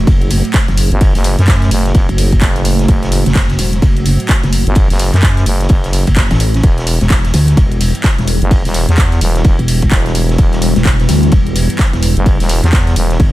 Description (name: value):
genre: bass house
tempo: 128 BPM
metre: 4/4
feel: swing 61% on 16ths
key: E minor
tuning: A4 = 440 Hz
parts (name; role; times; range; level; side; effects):
- dark analog pad; sustained chords; 0.0-13.3 s; G3 to G5; -21 LUFS; equal; chorus, sidechain pumping
- pulsing pluck wobble bass; bass; 0.0-13.3 s; E1 to D2; -13 LUFS; equal; chorus, overdrive, sidechain pumping
- big-room dance drum kit; drums; 0.1-13.3 s; handclaps, hi-hat; -20 LUFS; equal; none
- electronic kick drum; drums; 0.1-13.3 s; none; -12 LUFS; equal; none
- raw garage drum kit; drums; 0.1-13.3 s; ride cymbal, snare drum; -26 LUFS; equal; sidechain pumping on cymbals, high-pass filter on cymbals, high-pass filter on snare, high-pass filter on room
- growling FM bass; bass; 0.9-13.2 s; E1 to F#2; -13 LUFS; equal; sidechain pumping
room: studio reverb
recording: none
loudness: -9 LUFS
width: side -16 dB against mid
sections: 0.0-13.3 A section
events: none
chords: 0.0 F#dim; 6.6 Em